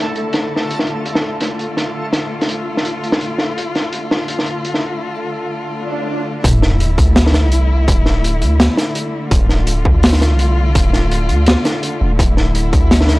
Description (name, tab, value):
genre	half-time drum and bass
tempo	167 BPM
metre	4/4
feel	swing 56% on 16ths, half-time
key	D minor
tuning	A4 = 440 Hz
part	dark studio cello section	sustained chords	0.0-13.2 s	D3 to F4	-22 LUFS	left 1 dB	sidechain pumping
part	backwards swelling texture	texture	0.0-5.0 s	A3 to A4	-28 LUFS	equal	built-in reverb
part	crunchy breakbeat drum kit	drums	0.2-13.2 s	hi-hat, snare drum	-17 LUFS	equal	low-pass filter on hats, low-pass filter on snare, low-pass filter on room
part	swell and sub drop	sound effects	5.8-7.9 s	none	-20 LUFS	equal	none
part	long sustained 808-style bass	bass	6.4-13.2 s	D1 to D2	-14 LUFS	equal	tube saturation
part	electronic kick drum	drums	6.4-12.8 s	none	-15 LUFS	equal	distortion
room	studio reverb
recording	dry, gritty hardware recording, cassette tape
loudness	-13 LUFS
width	side -20 dB against mid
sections	0.0-6.4 A section; 6.4-13.2 B section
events	filter sweep on cello section 0.0-6.4; break 5.0-6.4; swell 5.8-6.4; drop 6.4-13.2; impact 6.4-7.9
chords	0.0 D5